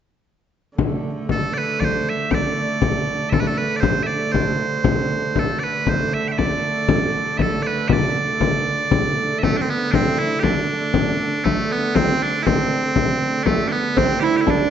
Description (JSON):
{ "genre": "medieval dance", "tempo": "118 BPM", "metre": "2/4", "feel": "straight", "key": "unclear", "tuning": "A4 = 438 Hz", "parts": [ { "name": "clear hurdy-gurdy", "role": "drone", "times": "0.8-14.7 s", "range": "D3 to A3", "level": "-26 LUFS", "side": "right 2 dB", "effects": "none" }, { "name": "frame drum", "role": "percussion", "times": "0.8-14.7 s", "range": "none", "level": "-20 LUFS", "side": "left 3 dB", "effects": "none" }, { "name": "loud bright bagpipes", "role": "melody", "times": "1.3-14.7 s", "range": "A3 to G5", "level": "-22 LUFS", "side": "right 3 dB", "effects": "none" }, { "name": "lute", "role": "second line", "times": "13.5-14.7 s", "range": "A3 to E4", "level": "-21 LUFS", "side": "right 7 dB", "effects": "none" } ], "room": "wet recital hall reverb, RT60 1.3 s", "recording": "dark, warm production, nothing above 7.7 kHz", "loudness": "-18 LUFS", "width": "side -9 dB against mid", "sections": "0.8-8.9 A section; 8.9-14.7 A section", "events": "none", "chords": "none" }